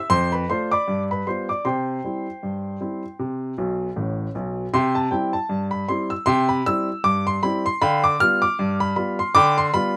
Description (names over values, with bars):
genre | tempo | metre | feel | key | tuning
ragtime piano | 78 BPM | 2/4 | swing 57% on 16ths | C major | A4 = 440 Hz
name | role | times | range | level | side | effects
warm upright piano | solo | 0.0-10.0 s | A1 to F6 | -22 LUFS | equal | none
room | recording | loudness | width
moderate booth ambience, RT60 0.2 s | none | -22 LUFS | mono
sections
0.0-4.7 A section; 4.7-10.0 A section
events
upright piano fill 3.6-4.7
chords
0.1 Dm/F; 0.9 G7; 1.7 C; 7.8 G7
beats
| 0.11 0.88 | 1.65 2.43 | 3.20 3.98 | 4.75 5.52 | 6.29 7.06 | 7.82 8.59 | 9.36